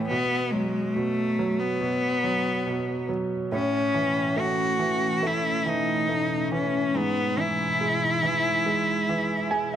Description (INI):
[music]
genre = pop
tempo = 70 BPM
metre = 4/4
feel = straight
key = E major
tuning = A4 = 442 Hz
[part]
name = clear cello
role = melody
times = 0.0-9.8 s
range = G#3 to F#4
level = -25 LUFS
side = left 1 dB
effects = none
[part]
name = clear upright piano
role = accompaniment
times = 0.0-9.8 s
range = G#2 to G#5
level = -28 LUFS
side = right 3 dB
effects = none
[part]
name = glassy FM pad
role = sustained chords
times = 4.2-9.8 s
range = B2 to E4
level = -32 LUFS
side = left 4 dB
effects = ensemble chorus, built-in reverb
[sound]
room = light reverb, small room reverb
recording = none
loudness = -23 LUFS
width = side -10 dB against mid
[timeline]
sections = 0.0-9.8 A section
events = upright piano fill 9.1-9.8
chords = 0.1 B5; 3.5 Aadd9; 7.0 E/G#